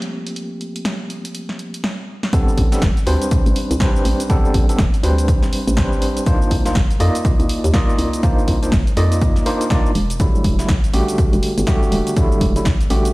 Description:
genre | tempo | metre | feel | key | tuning
deep house | 122 BPM | 4/4 | swing 60% on 16ths | unclear | A4 = 441 Hz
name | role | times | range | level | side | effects
overdriven tine electric piano | stabs | 0.0-13.1 s | D3 to Eb5 | -21 LUFS | equal | fast tremolo, sidechain pumping, tape echo
punchy analog drum machine | drums | 0.0-13.1 s | hi-hat, shaker, snare drum | -26 LUFS | equal | none
electronic kick drum | drums | 2.3-12.8 s | none | -17 LUFS | equal | none
hollow knocking FM bass | bass | 2.6-13.1 s | E1 to F2 | -18 LUFS | equal | none
room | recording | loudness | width
digital ambience | played on a big sound system in a bare room, stone room reverb, low-pass filter | -15 LUFS | side -21 dB against mid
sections
0.0-2.3 A section; 2.3-13.1 B section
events
filter sweep on tine electric piano 0.0-2.3; drum fill 1.8-2.3; drop 2.3-13.1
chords
0.0 Gm11; 2.3 Am11; 6.3 Cm11; 10.2 Em11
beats
| 0.36 0.85 1.35 1.84 | 2.33 2.82 3.31 3.81 | 4.30 4.79 5.28 5.77 | 6.26 6.76 7.25 7.74 | 8.23 8.72 9.21 9.71 | 10.20 10.69 11.18 11.67 | 12.17 12.66

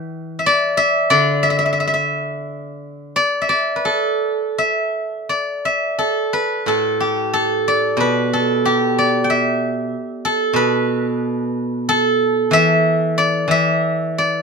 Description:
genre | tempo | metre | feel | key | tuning
chinese traditional, Chinese solo plucked strings | 81-97 BPM | 4/4 | rubato | A shang mode | A4 = 435 Hz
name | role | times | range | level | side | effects
steel-string zither | solo | 0.0-14.4 s | A2 to G5 | -16 LUFS | equal | none
room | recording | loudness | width
moderate studio reverb, RT60 0.7 s | minimal, uncompressed stereo recording | -16 LUFS | side -4 dB against mid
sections
0.0-5.3 A section; 5.3-14.4 B section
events
none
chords
none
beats
0.47 1.12 1.79 | 2.46 3.14 3.85 4.58 | 5.29 5.99 6.67 7.33 | 7.99 8.65 9.30 9.94 | 10.56 11.20 11.86 12.52 | 13.17 13.83

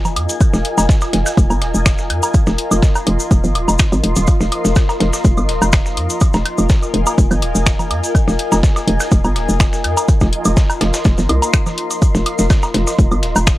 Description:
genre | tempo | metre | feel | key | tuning
minimal techno | 124 BPM | 4/4 | swing 53% on 16ths | F minor | A4 = 436 Hz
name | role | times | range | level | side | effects
hollow knocking FM bass | bass | 0.0-13.6 s | Eb1 to F2 | -17 LUFS | equal | sidechain pumping
cabasa | percussion | 0.0-13.6 s | none | -26 LUFS | left 1 dB | none
granular cloud pad | texture | 0.0-13.6 s | F4 to C6 | -22 LUFS | left 1 dB | built-in reverb, sidechain pumping
dusty soul sampler-style drum kit | drums | 0.1-13.6 s | hi-hat, snare drum | -29 LUFS | equal | high-pass filter on snare, sidechain pumping on hats, high-pass filter on hats
congas and woodblock | percussion | 0.1-13.6 s | none | -22 LUFS | right 1 dB | overdrive
house drum kit | drums | 0.2-13.6 s | finger snaps, hi-hat | -19 LUFS | left 2 dB | overdrive
electronic kick drum | drums | 0.4-13.6 s | none | -13 LUFS | equal | overdrive
room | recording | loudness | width
little or no reverb | dry, gritty hardware recording, cassette tape | -12 LUFS | side -16 dB against mid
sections
0.0-13.6 A section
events
none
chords
0.0 Fm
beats
| 0.41 0.89 1.37 1.86 | 2.34 2.83 3.31 3.79 | 4.28 4.76 5.25 5.73 | 6.21 6.70 7.18 7.67 | 8.15 8.63 9.12 9.60 | 10.08 10.57 11.05 11.54 | 12.02 12.50 12.99 13.47

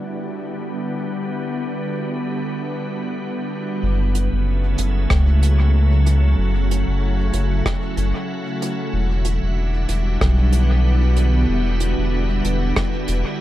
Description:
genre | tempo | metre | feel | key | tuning
ambient dub | 94 BPM | 4/4 | swing 55% on 16ths | unclear | A4 = 442 Hz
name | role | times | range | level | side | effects
soft additive organ-like pad | sustained chords | 0.0-13.4 s | C#3 to F#4 | -23 LUFS | equal | ensemble chorus, built-in reverb
warm sub bass | bass | 3.8-13.2 s | E1 to C#2 | -17 LUFS | equal | none
soft brush drum kit | drums | 4.1-13.2 s | hi-hat, rim click | -26 LUFS | right 2 dB | dub echo
electronic kick drum | drums | 5.1-12.9 s | none | -24 LUFS | equal | none
room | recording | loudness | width
studio reverb | echo-heavy mix | -18 LUFS | side -14 dB against mid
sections
0.0-3.8 A section; 3.8-13.4 B section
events
filter sweep on ambient pad 0.0-3.8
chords
0.0 Em9; 3.8 F#m7; 8.9 Em9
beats
0.00 0.64 | 1.28 1.92 2.55 3.19 | 3.83 4.47 5.11 5.75 | 6.38 7.02 7.66 8.30 | 8.94 9.57 10.21 10.85 | 11.49 12.13 12.77 13.40

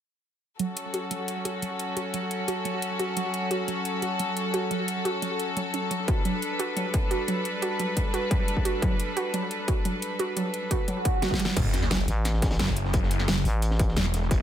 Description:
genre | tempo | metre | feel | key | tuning
dark technical drum and bass | 175 BPM | 4/4 | straight | F# phrygian | A4 = 440 Hz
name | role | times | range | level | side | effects
rich studio string section | sustained chords | 0.6-11.5 s | F#3 to B4 | -29 LUFS | left 1 dB | sidechain pumping
warbly dusty pluck | arpeggios | 0.6-11.5 s | F#3 to F#4 | -31 LUFS | right 3 dB | chorus, sidechain pumping, tape echo
dubstep drum kit | drums | 0.6-14.4 s | crash cymbal, hi-hat, snare drum | -30 LUFS | equal | none
electronic kick drum | drums | 6.1-14.4 s | none | -26 LUFS | equal | distortion
swell and sub drop | sound effects | 11.0-12.9 s | none | -33 LUFS | right 1 dB | none
snarling distorted saw bass | bass | 11.6-14.4 s | E1 to F#1 | -26 LUFS | equal | distortion, overdrive
crunchy breakbeat drum kit | drums | 11.6-14.4 s | hi-hat, snare drum | -37 LUFS | equal | high-pass filter on hats, high-pass filter on snare, high-pass filter on room
growling FM bass | bass | 12.1-14.0 s | A1 | -25 LUFS | equal | none
room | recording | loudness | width
light reverb, studio reverb | none | -25 LUFS | side -10 dB against mid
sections
0.6-11.6 A section; 11.6-14.4 B section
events
filter sweep on synth arpeggio sound 0.6-11.6; swell 11.0-11.6; drum fill 11.2-11.6; drop 11.6-14.4; impact 11.6-12.9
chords
0.6 F#m; 6.1 G; 11.6 F#m7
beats
| 0.59 0.94 1.28 1.62 | 1.97 2.31 2.65 3.00 | 3.34 3.68 4.02 4.37 | 4.71 5.05 5.39 5.74 | 6.08 6.42 6.77 7.11 | 7.45 7.79 8.14 8.48 | 8.82 9.17 9.51 9.85 | 10.20 10.54 10.88 11.22 | 11.57 11.91 12.25 12.60 | 12.94 13.28 13.62 13.97 | 14.31

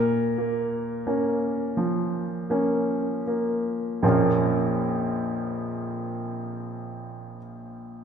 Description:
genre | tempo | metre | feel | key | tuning
classical, romantic nocturne for solo piano | 38-45 BPM | 3/4 | rubato | Bb minor | A4 = 440 Hz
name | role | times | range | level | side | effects
bright grand piano | solo | 0.0-8.0 s | Bb1 to Bb4 | -24 LUFS | right 1 dB | none
room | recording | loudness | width
wet scoring stage reverb, RT60 1.5 s | minimal, uncompressed stereo recording | -23 LUFS | side -7 dB against mid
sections
0.0-4.0 A section; 4.0-8.0 B section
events
slowing down 0.0-4.0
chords
0.0 Bbm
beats
1.03 2.49 | 4.02 5.42 6.81

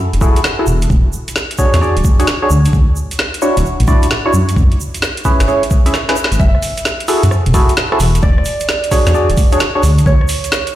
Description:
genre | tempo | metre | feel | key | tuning
UK garage, two-step garage | 131 BPM | 4/4 | swing 66% on 16ths | F# minor | A4 = 441 Hz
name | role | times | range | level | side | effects
dark detuned saw bass | bass | 0.1-10.2 s | D1 to F#2 | -13 LUFS | equal | none
garage drum kit | drums | 0.1-10.7 s | hi-hat, rim click, snare drum | -19 LUFS | equal | overdrive, small room ambience
percussive organ stab | stabs | 0.2-9.8 s | C#4 to E5 | -17 LUFS | equal | chorus, dub echo
electronic kick drum | drums | 0.2-10.2 s | none | -12 LUFS | equal | overdrive, small room ambience
egg shaker | percussion | 0.2-10.6 s | none | -30 LUFS | right 5 dB | none
concert harp | melody | 6.4-10.8 s | C#5 to E5 | -22 LUFS | right 2 dB | dub echo
room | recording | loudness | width
light reverb, digital ambience | played on a big sound system in a bare room, large studio reverb | -11 LUFS | side -13 dB against mid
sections
0.0-10.8 A section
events
drum fill 5.9-6.4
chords
0.0 F#m9; 0.7 E13; 2.5 Dmaj9; 4.6 C#m7; 6.4 F#m9; 8.0 E13; 9.8 Dmaj7(no3)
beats
0.44 | 0.90 1.36 1.82 2.27 | 2.73 3.19 3.65 4.11 | 4.56 5.02 5.48 5.94 | 6.40 6.85 7.31 7.77 | 8.23 8.69 9.14 9.60 | 10.06 10.52

